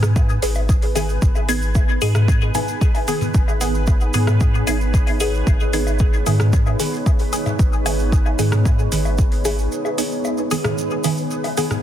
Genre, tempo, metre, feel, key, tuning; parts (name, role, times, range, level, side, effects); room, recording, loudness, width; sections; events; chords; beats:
dub techno; 113 BPM; 4/4; straight; G# minor; A4 = 443 Hz
deep dark ambient pad; sustained chords; 0.0-11.8 s; B3 to C#5; -27 LUFS; right 1 dB; chorus, built-in reverb, vintage 12-bit sampler grit, sidechain pumping
filtered dub chord stab; stabs; 0.0-11.8 s; D#3 to G#4; -24 LUFS; equal; phaser, sidechain pumping, dub echo
soft dub sub bass; bass; 0.0-9.7 s; G#1 to G#2; -20 LUFS; equal; sidechain pumping
deep house drum kit; drums; 0.0-11.8 s; hi-hat, rim click; -29 LUFS; right 1 dB; overdrive, studio ambience
electronic toms and woodblock; percussion; 0.0-11.8 s; -29 LUFS; left 3 dB; overdrive, sidechain pumping on perc, studio ambience, sidechain pumping on toms, dub echo
maracas; percussion; 0.0-11.8 s; -33 LUFS; right 6 dB
bubbling stepped-filter texture; texture; 0.0-11.8 s; B4; -34 LUFS; right 4 dB; chorus, built-in reverb, sidechain pumping
electronic kick drum; drums; 0.2-9.3 s; -17 LUFS; equal; overdrive, studio ambience
light reverb; dense, heavily limited modern master; -16 LUFS; side -11 dB against mid
0.0-11.8 A section
filter sweep on synth stab 0.0-11.8; break 9.7-11.8
0.0 G#m
0.16 0.69 | 1.22 1.75 2.28 2.81 | 3.34 3.88 4.41 4.94 | 5.47 6.00 6.53 7.06 | 7.59 8.12 8.65 9.19 | 9.72 10.25 10.78 11.31